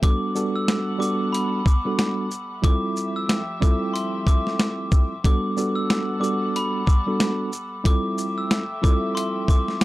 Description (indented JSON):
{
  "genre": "hip hop, boom-bap hip-hop",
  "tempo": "92 BPM",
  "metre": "4/4",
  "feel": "swing 61% on 16ths",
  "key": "G major",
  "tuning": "A4 = 441 Hz",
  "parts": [
    { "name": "glockenspiel with brass mallets", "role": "melody", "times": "0.0-9.8 s", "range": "B5 to E6", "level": "-28 LUFS", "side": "left 1 dB", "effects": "high-pass filter, low-pass filter, tape echo" },
    { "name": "mellow tine electric piano", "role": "accompaniment", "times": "0.0-9.8 s", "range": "G3 to A4", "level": "-25 LUFS", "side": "right 2 dB", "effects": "medium stereo tremolo, cassette tape, high-pass filter, low-pass filter" },
    { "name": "warm studio string section", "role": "sustained chords", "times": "0.0-9.8 s", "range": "F3 to F#5", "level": "-36 LUFS", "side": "left 2 dB", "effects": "high-pass filter, low-pass filter" },
    { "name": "boom bap sampler-style drum kit", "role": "drums", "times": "0.0-9.8 s", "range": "hi-hat, kick drum, shaker, snare drum", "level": "-19 LUFS", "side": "equal", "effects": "none" }
  ],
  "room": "little or no reverb",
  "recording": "dark, warm production",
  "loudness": "-20 LUFS",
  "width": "side -18 dB against mid",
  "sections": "0.0-9.8 A section",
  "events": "none",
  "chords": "0.0 Gmaj9; 2.6 Fmaj9; 5.2 Gmaj9; 7.9 Fmaj9"
}